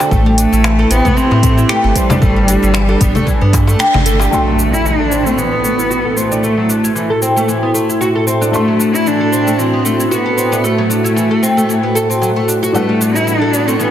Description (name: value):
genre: organic downtempo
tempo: 114 BPM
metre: 4/4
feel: swing 56% on 16ths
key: unclear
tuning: A4 = 441 Hz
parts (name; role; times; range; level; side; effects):
- warm analog pad; sustained chords; 0.0-13.9 s; A2 to C6; -19 LUFS; right 1 dB; chorus, sidechain pumping
- oud; arpeggios; 0.0-13.9 s; E3 to A4; -17 LUFS; equal; low-pass filter, digital delay
- deep house drum kit; drums; 0.0-13.9 s; cabasa, congas, finger snaps, hi-hat; -20 LUFS; equal; soft clipping on snare
- darbuka; percussion; 0.0-4.3 s; none; -22 LUFS; left 2 dB; none
- warm sub bass; bass; 0.1-4.3 s; G1 to A2; -14 LUFS; equal; sidechain pumping
- electronic kick drum; drums; 0.1-3.7 s; none; -16 LUFS; equal; none
- rich cello; melody; 0.4-13.9 s; G3 to E4; -16 LUFS; equal; digital delay
- felt-muted upright piano; accompaniment; 4.3-13.9 s; A2 to C6; -22 LUFS; left 4 dB; sidechain pumping, digital delay
- impact; sound effects; 4.3-6.4 s; none; -21 LUFS; equal; none
room: moderate lush hall reverb, RT60 2.4 s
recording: dense, heavily limited modern master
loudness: -11 LUFS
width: side -11 dB against mid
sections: 0.0-4.3 A section; 4.3-13.9 B section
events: band accent 3.8; impact 4.3-6.4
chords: 0.1 Am7; 2.2 G; 4.3 D7/A; 12.7 Gmaj7/A